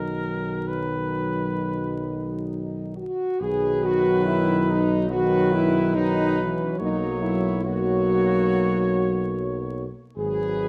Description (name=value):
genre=classical, hymn-like piece for brass band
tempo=62-73 BPM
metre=4/4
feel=rubato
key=B major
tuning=A4 = 440 Hz
part: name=warm cornet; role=melody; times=0.0-10.7 s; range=A#4 to C#5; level=-33 LUFS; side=equal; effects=none
part: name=warm French horn section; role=second line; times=0.0-10.7 s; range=C#4 to G#4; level=-28 LUFS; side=equal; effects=none
part: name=dark euphonium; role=accompaniment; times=0.0-10.7 s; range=F#3 to A#3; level=-32 LUFS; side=equal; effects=none
part: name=warm trombone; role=accompaniment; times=0.0-10.7 s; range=D#3 to F#3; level=-32 LUFS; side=equal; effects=none
part: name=warm tuba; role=bass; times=0.0-10.7 s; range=G#1 to B1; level=-30 LUFS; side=equal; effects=none
room=moderate recital hall reverb, RT60 1.5 s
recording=dark, warm production, vinyl crackle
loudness=-24 LUFS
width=mono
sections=0.0-3.4 A section; 3.4-10.7 B section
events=none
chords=0.0 B; 6.8 F#/B; 10.2 G#m7